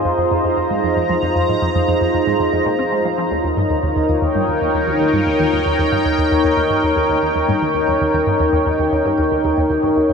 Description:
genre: ambient.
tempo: 115 BPM.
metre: 4/4.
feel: straight.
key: unclear.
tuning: A4 = 440 Hz.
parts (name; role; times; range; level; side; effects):
sweeping resonant pad; sustained chords; 0.0-10.1 s; Eb4 to Bb5; -18 LUFS; left 1 dB; chorus.
vibraphone with soft mallets; arpeggios; 0.0-10.1 s; Eb4 to Db5; -19 LUFS; equal; auto-pan, tape echo.
resonant blip pluck; riff; 0.0-10.1 s; Eb2 to C4; -22 LUFS; right 1 dB; phaser, wide subtle chorus, tape echo.
room: wet huge ambient reverb, RT60 8.0 s.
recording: dark, warm production.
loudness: -15 LUFS.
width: side -6 dB against mid.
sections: 0.0-10.1 A section.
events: none.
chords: 0.0 Fm7; 3.3 Eb7.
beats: 0.18 0.70 | 1.22 1.74 2.27 2.79 | 3.31 3.83 4.35 4.87 | 5.40 5.92 6.44 6.96 | 7.48 8.00 8.53 9.05 | 9.57 10.09.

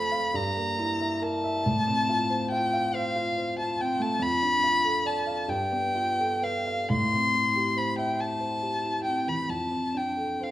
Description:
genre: classical, romantic duo for violin and grand piano.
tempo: 46 BPM (dotted quarters).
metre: 6/8.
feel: uneven beats, rubato.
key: unclear.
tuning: A4 = 436 Hz.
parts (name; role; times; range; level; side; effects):
rich violin; melody; 0.0-10.5 s; F5 to C6; -26 LUFS; left 1 dB; none.
dark baby grand piano; accompaniment; 0.0-10.5 s; F2 to G5; -29 LUFS; right 1 dB; none.
room: wet recital hall reverb, RT60 1.6 s.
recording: none.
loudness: -24 LUFS.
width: side -14 dB against mid.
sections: 0.0-10.5 A section.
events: none.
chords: 0.3 Edim/G; 1.6 F/A; 4.2 Dm/F; 5.5 G9; 6.9 Am7; 9.5 Dm7/F.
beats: 0.33 | 1.64 2.93 | 4.21 5.49 | 6.90 8.19 | 9.49.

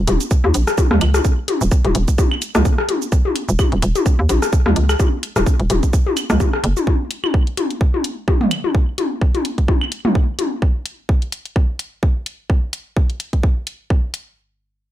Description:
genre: minimal techno.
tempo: 128 BPM.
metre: 4/4.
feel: swing 56% on 16ths.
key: Eb minor.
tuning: A4 = 441 Hz.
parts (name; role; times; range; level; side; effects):
hollow knocking FM bass; bass; 0.0-6.7 s; Eb1 to Eb2; -16 LUFS; equal; sidechain pumping.
electronic hi-hat and cabasa; drums; 0.1-14.2 s; none; -27 LUFS; equal; studio ambience.
minimal click drum kit; percussion; 0.1-10.5 s; claves, rim click, toms; -20 LUFS; left 2 dB; studio ambience, digital delay.
electronic kick drum; drums; 0.3-14.0 s; none; -16 LUFS; equal; studio ambience.
room: light reverb.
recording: dark, warm production.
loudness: -16 LUFS.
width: side -13 dB against mid.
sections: 0.0-14.4 A section.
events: none.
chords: none.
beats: 0.31 0.78 | 1.25 1.72 2.18 2.65 | 3.12 3.59 4.06 4.53 | 5.00 5.46 5.93 6.40 | 6.87 7.34 7.81 8.28 | 8.75 9.21 9.68 10.15 | 10.62 11.09 11.56 12.03 | 12.50 12.96 13.43 13.90.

